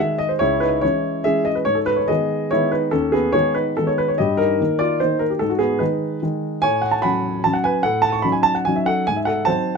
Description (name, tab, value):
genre	classical, piano waltz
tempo	145 BPM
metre	3/4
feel	uneven beats, rubato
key	unclear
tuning	A4 = 440 Hz
part	warm grand piano	solo	0.0-9.8 s	C#2 to C#6	-17 LUFS	equal	none
room	light reverb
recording	close, detailed microphones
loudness	-17 LUFS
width	side -5 dB against mid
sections	0.0-9.8 A section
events	none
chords	0.4 C#m; 1.7 G#m; 4.2 D#/G; 5.4 G#m; 6.6 F#m/A; 7.8 D#m7b5/A; 9.1 G#7b9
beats	0.00 | 0.41 0.83 1.26 | 1.67 2.09 2.52 | 2.93 3.34 3.78 | 4.20 4.60 5.02 | 5.42 5.81 6.23 | 6.64 7.04 7.45 | 7.85 8.24 8.67 | 9.08 9.47